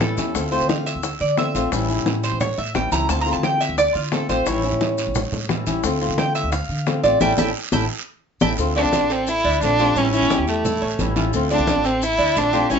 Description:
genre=latin, Cuban son and guajira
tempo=175 BPM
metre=4/4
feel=straight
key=D minor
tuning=A4 = 440 Hz
part: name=flamenco guitar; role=accompaniment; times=0.0-12.8 s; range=D3 to F4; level=-24 LUFS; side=left 4 dB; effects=none
part: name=Cuban tres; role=arpeggios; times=0.0-12.8 s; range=C#4 to Bb5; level=-23 LUFS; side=right 2 dB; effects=none
part: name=upright bass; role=bass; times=0.0-12.8 s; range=G1 to D3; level=-26 LUFS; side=right 1 dB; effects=none
part: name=bongos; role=percussion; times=0.0-8.5 s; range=none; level=-26 LUFS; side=left 6 dB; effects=none
part: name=congas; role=percussion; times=0.0-12.8 s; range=none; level=-28 LUFS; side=equal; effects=none
part: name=guiro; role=percussion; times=0.0-12.8 s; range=none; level=-33 LUFS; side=right 7 dB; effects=none
part: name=maracas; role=percussion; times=0.0-12.8 s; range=none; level=-35 LUFS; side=left 8 dB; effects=none
part: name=warm violin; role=melody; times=8.8-12.8 s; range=A3 to E4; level=-20 LUFS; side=right 1 dB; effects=none
room=moderate studio reverb, RT60 0.5 s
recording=nothing above 7.8 kHz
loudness=-18 LUFS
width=side -6 dB against mid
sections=0.0-8.6 A section; 8.6-12.8 B section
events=Cuban tres solo 0.0-8.6; band accent 7.2-8.6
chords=0.3 Dm7; 1.7 A7; 3.1 Dm7; 4.5 A7; 5.8 Dm7; 7.2 A7; 8.6 Dm7; 10.0 A7; 11.3 Dm7

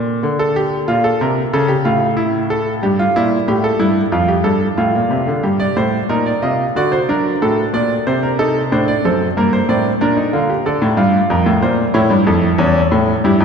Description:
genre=classical, baroque-style 3-part fugue for grand piano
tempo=92 BPM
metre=4/4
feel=straight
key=G minor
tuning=A4 = 440 Hz
part: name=bright grand piano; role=solo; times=0.0-13.4 s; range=E2 to Eb5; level=-13 LUFS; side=equal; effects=none
room=wet church reverb, RT60 3.6 s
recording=recorded in a church or concert hall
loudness=-13 LUFS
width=side -6 dB against mid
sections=0.0-5.4 A section; 5.4-13.4 B section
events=none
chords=0.2 Dm; 1.5 A; 2.8 A5/G; 4.1 Dm/F; 5.4 Gm; 6.8 D; 8.1 D7/C; 9.4 Gm; 10.7 Dm; 11.9 A

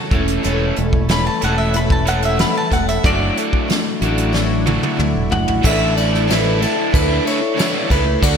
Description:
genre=folk rock and heartland rock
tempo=92 BPM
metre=4/4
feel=straight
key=A major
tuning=A4 = 440 Hz
part: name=picked twelve-string acoustic guitar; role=accompaniment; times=0.0-8.4 s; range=F#2 to A4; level=-24 LUFS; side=left 6 dB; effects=lush chorus
part: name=hand-pumped harmonium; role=sustained chords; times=0.0-8.4 s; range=C#4 to F#5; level=-30 LUFS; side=right 2 dB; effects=none
part: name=crunchy overdriven guitar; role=riff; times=0.0-8.4 s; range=A2 to F#4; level=-21 LUFS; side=right 1 dB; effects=lush chorus
part: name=fingered electric bass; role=bass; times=0.1-8.4 s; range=E1 to D2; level=-20 LUFS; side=equal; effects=none
part: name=soft brush drum kit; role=drums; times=0.1-8.4 s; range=crash cymbal, hi-hat, kick drum, ride cymbal, snare drum, toms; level=-20 LUFS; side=equal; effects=gated reverb
part: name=mandolin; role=second line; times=1.1-4.3 s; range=D5 to B5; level=-22 LUFS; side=equal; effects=ping-pong delay
part: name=clean lap steel guitar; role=melody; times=5.3-8.4 s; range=A4 to F#5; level=-21 LUFS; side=right 2 dB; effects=none
room=moderate lush hall reverb, RT60 1.8 s, small room ambience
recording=bright 1980s-style digital production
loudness=-14 LUFS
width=side -7 dB against mid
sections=0.0-5.6 A section; 5.6-8.4 B section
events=mandolin solo 0.0-5.6; drum fill 4.3-5.6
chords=0.1 A/E; 3.0 Dadd9/F#; 5.6 Asus4

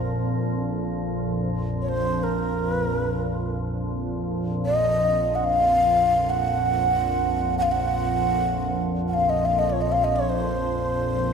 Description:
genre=world meditative, free-time meditation music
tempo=free time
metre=none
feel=none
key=unclear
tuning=A4 = 439 Hz
part: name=breathy mellow xiao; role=melody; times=0.0-11.3 s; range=Bb4 to Gb5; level=-22 LUFS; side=equal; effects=none
part: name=soft additive organ-like pad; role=drone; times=0.0-11.3 s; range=Bb1 to F2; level=-25 LUFS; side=equal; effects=ensemble chorus, built-in reverb
part: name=crotales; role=texture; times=0.0-4.2 s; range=Bb6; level=-49 LUFS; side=right 3 dB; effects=stereo widening
room=wet lush hall reverb, RT60 1.9 s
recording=none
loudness=-21 LUFS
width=side -6 dB against mid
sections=0.0-3.8 A section; 3.8-11.3 A section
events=none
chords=none

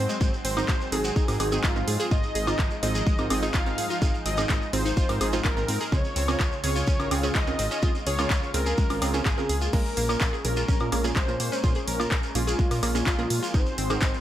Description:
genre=progressive house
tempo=126 BPM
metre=4/4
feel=straight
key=Bb minor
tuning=A4 = 441 Hz
part: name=wide unison lead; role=melody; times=0.0-14.2 s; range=F4 to F5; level=-31 LUFS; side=equal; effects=sidechain pumping, digital delay
part: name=lush unison pad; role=sustained chords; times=0.0-14.2 s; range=Db3 to F4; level=-36 LUFS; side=equal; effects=chorus, sidechain pumping
part: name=analog pluck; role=arpeggios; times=0.0-14.1 s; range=Ab3 to Ab4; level=-34 LUFS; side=equal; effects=chorus, sidechain pumping, digital delay
part: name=dark detuned saw bass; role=bass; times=0.0-14.1 s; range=Ab1 to Bb2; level=-30 LUFS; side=equal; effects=sidechain pumping
part: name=shekere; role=percussion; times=0.1-14.2 s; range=none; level=-37 LUFS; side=right 3 dB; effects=none
part: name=wide unison pluck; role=stabs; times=0.2-14.2 s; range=Ab2 to Bb4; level=-31 LUFS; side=right 3 dB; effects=sidechain pumping, digital delay
part: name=electronic kick drum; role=drums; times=0.2-14.1 s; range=none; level=-25 LUFS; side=equal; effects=none
part: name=house drum kit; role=drums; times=0.4-14.1 s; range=crash cymbal, handclaps, hi-hat, woodblock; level=-31 LUFS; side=equal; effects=overdrive
room=digital ambience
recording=none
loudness=-22 LUFS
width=side -12 dB against mid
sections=0.0-14.2 A section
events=none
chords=0.0 Ab7; 2.1 Fm7/Ab; 5.9 Dbmaj7; 9.7 Bbm7; 13.5 Ab7

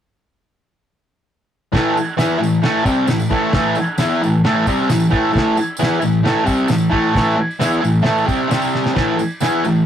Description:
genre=garage rock duo or trio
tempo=133 BPM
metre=4/4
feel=straight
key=A minor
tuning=A4 = 441 Hz
part: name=fuzz guitar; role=riff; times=1.7-9.8 s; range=A2 to E4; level=-15 LUFS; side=equal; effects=distortion
part: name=cloth-damped thuddy drum kit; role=drums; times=1.7-9.5 s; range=crash cymbal, kick drum, snare drum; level=-22 LUFS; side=equal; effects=none
part: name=tambourine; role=percussion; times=1.7-9.8 s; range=none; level=-36 LUFS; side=right 4 dB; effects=none
room=moderate booth ambience, RT60 0.2 s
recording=rough rehearsal-room recording, warm saturation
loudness=-14 LUFS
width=side -9 dB against mid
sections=1.7-9.9 A section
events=drum fill 8.7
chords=1.7 Am; 8.5 C5; 9.0 A5

